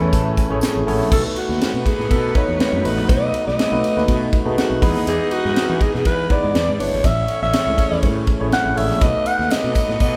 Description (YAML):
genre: polished 1980s jazz-funk pop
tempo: 122 BPM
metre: 4/4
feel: swing 54% on 16ths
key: unclear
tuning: A4 = 442 Hz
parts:
  - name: breathy alto saxophone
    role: melody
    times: 0.0-10.2 s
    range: E3 to F#5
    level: -24 LUFS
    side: equal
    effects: none
  - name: mellow horn section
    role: second line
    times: 0.0-10.2 s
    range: A3 to D#5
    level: -34 LUFS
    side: equal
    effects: none
  - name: tine electric piano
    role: accompaniment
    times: 0.0-10.2 s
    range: G3 to B5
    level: -26 LUFS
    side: equal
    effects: none
  - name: warm studio string section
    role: sustained chords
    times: 0.0-10.2 s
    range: E3 to D#5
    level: -33 LUFS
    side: equal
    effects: none
  - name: fretless electric bass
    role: bass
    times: 0.0-10.2 s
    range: G1 to E3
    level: -26 LUFS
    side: equal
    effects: none
  - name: tight funk drum kit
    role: drums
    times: 0.1-10.1 s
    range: crash cymbal, hi-hat, kick drum, ride cymbal, snare drum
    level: -23 LUFS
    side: equal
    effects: none
  - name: tambourine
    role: percussion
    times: 0.1-0.7, 9.0-10.1 s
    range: none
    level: -42 LUFS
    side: equal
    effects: none
room: moderate large studio reverb, RT60 1.1 s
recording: band playing live in one room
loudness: -18 LUFS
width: mono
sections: 0.0-1.1 A section; 1.1-10.2 A section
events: tine electric piano fill 0.0-1.1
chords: 0.0 Amaj7; 1.1 B7; 4.8 Emaj7; 6.5 E7; 7.0 Amaj7; 9.0 B7